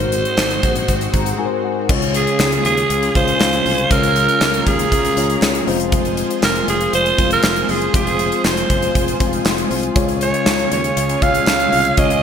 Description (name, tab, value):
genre	1980s-style pop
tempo	119 BPM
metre	4/4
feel	straight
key	Db major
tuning	A4 = 439 Hz
part	raspy alto saxophone	melody	0.0-12.2 s	Ab4 to F5	-18 LUFS	right 3 dB	ping-pong delay
part	mellow tine electric piano	accompaniment	0.0-12.2 s	Ab2 to C6	-21 LUFS	left 5 dB	ensemble chorus
part	lush unison pad	sustained chords	0.0-12.2 s	Db3 to C5	-25 LUFS	right 1 dB	chorus
part	sustaining fretless electric bass	bass	0.0-12.2 s	F1 to Eb2	-25 LUFS	equal	none
part	gated 80s drum kit	drums	0.0-12.2 s	crash cymbal, hi-hat, kick drum, snare drum, tambourine	-19 LUFS	equal	gated reverb
part	group handclap	percussion	0.4-11.6 s	none	barely audible	none	none
room	moderate lush hall reverb, RT60 1.7 s, small room ambience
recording	bright 1980s-style digital production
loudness	-14 LUFS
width	side -8 dB against mid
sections	0.0-1.9 A section; 1.9-12.2 B section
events	tine electric piano fill 0.9-1.9, 9.2-10.0; break 1.4-1.9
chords	0.0 Ab7; 1.9 Db; 5.7 Fm; 10.0 Db